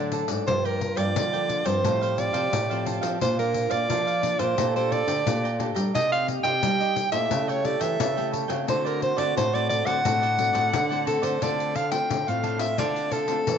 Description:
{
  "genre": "samba and choro",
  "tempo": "88 BPM",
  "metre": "4/4",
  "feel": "straight",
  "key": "unclear",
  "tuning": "A4 = 440 Hz",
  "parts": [
    { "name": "clear soprano saxophone", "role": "melody", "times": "0.0-13.6 s", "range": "A4 to G5", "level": "-25 LUFS", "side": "right 1 dB", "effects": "none" },
    { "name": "cavaquinho", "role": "accompaniment", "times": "0.0-13.4 s", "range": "D4 to Bb5", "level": "-33 LUFS", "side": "right 12 dB", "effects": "none" },
    { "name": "nylon-string guitar", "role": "accompaniment", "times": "0.0-13.6 s", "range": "G2 to D5", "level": "-33 LUFS", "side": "left 11 dB", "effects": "none" },
    { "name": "nylon-string guitar", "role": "bass", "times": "0.0-13.6 s", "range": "G2 to G3", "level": "-30 LUFS", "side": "equal", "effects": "none" },
    { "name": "pandeiro", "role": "percussion", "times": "0.1-13.6 s", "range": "none", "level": "-32 LUFS", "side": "left 8 dB", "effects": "none" },
    { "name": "breathy trombone", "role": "second line", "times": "0.5-11.4 s", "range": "C4 to A4", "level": "-33 LUFS", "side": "right 9 dB", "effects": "none" }
  ],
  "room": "moderate plate reverb, RT60 3.0 s",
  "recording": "1960s-style stereo with parts hard left and right, nothing above 7.9 kHz",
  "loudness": "-22 LUFS",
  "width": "side -7 dB against mid",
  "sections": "0.0-11.4 A section; 11.4-13.6 B section",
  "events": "none",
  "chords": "0.5 Gm7; 1.8 F/A; 3.2 Bb; 4.6 Gmadd9/Bb; 5.9 Cmadd9; 7.3 A7/C#; 8.7 D7; 11.4 Dm7"
}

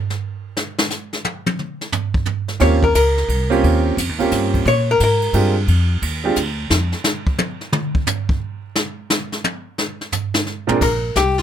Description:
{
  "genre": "jazz, small-group swing and bop",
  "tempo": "176 BPM",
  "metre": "3/4",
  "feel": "swing 65% on 8ths",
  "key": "unclear",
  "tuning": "A4 = 440 Hz",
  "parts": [
    { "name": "jazz brush drum kit", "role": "drums", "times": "0.1-11.4 s", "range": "brushed snare drum, crash cymbal, hi-hat, kick drum, ride cymbal, snare drum, toms", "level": "-21 LUFS", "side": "right 1 dB", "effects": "none" },
    { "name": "archtop guitar, miked and amplified", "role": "melody", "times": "2.6-5.5, 10.8-11.4 s", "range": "F4 to Db5", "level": "-17 LUFS", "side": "left 3 dB", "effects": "none" },
    { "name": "clear concert grand piano", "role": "accompaniment", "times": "2.6-6.4, 10.7-10.8 s", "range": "Bb2 to Bb4", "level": "-18 LUFS", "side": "right 4 dB", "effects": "none" },
    { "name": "upright bass", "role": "bass", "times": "2.6-6.9, 10.7-11.4 s", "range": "Bb1 to Bb2", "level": "-18 LUFS", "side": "equal", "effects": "none" }
  ],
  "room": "little or no reverb",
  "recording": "close, detailed microphones",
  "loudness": "-17 LUFS",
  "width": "side -9 dB against mid",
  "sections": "0.0-10.8 A section",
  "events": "hollow-body jazz guitar solo 0.0-10.8; drum solo 0.0-2.6, 6.7-10.8",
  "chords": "0.0 N.C.; 2.6 Eb13; 4.7 Bb13; 6.7 N.C.; 9.8 F5; 10.8 Bbsus2"
}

